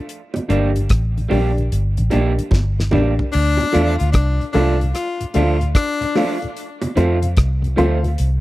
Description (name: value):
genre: roots reggae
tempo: 74 BPM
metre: 4/4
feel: swing 65% on 16ths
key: D minor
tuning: A4 = 440 Hz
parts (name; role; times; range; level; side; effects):
- damped 70s drum kit; drums; 0.1-8.4 s; crash cymbal, hi-hat, kick drum, rim click, snare drum, toms; -20 LUFS; equal; none
- bongos; percussion; 0.3-8.0 s; none; -26 LUFS; right 3 dB; none
- mellow tonewheel organ; accompaniment; 0.4-8.1 s; D2 to F4; -24 LUFS; left 2 dB; slow rotary speaker
- electric guitar through a small old amp; accompaniment; 0.5-8.0 s; F3 to G4; -25 LUFS; right 5 dB; tape echo
- dark upright piano; stabs; 0.5-8.1 s; D4 to F5; -23 LUFS; left 1 dB; none
- vintage muted fingered electric bass; bass; 0.5-8.4 s; G1 to F2; -18 LUFS; equal; none
- breathy tenor saxophone; second line; 3.3-6.4 s; D4 to F4; -22 LUFS; left 4 dB; tape echo
room: studio ambience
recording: dry, close 1970s-style studio recording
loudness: -15 LUFS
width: side -17 dB against mid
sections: 0.0-3.3 A section; 3.3-8.4 B section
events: drum fill 2.5-3.3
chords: 0.1 Gm; 3.3 Dm